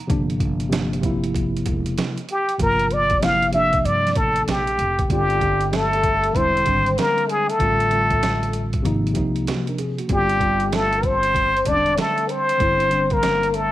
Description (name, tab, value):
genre	hip hop, jazz-hop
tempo	96 BPM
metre	4/4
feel	swing 66% on 16ths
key	G dorian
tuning	A4 = 441 Hz
part	mellow tine electric piano	accompaniment	0.0-13.7 s	C3 to Bb4	-25 LUFS	equal	medium stereo tremolo
part	upright bass	bass	0.1-13.7 s	E1 to G2	-26 LUFS	equal	none
part	boom bap sampler-style drum kit	drums	0.1-13.7 s	hi-hat, kick drum, snare drum	-26 LUFS	right 2 dB	none
part	trumpet with plunger mute	melody	2.3-13.7 s	G4 to F5	-19 LUFS	equal	none
part	warm trombone	second line	5.1-13.7 s	G3 to D4	-27 LUFS	left 9 dB	none
room	light reverb, small room ambience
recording	1960s-style stereo, vinyl crackle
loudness	-18 LUFS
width	side -14 dB against mid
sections	0.0-5.1 A section; 5.1-13.7 B section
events	muted trumpet solo 0.0-5.1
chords	0.1 Gm7; 5.1 Gsus2; 6.3 E7alt; 7.6 F69/A; 8.8 Abadd9; 10.1 G5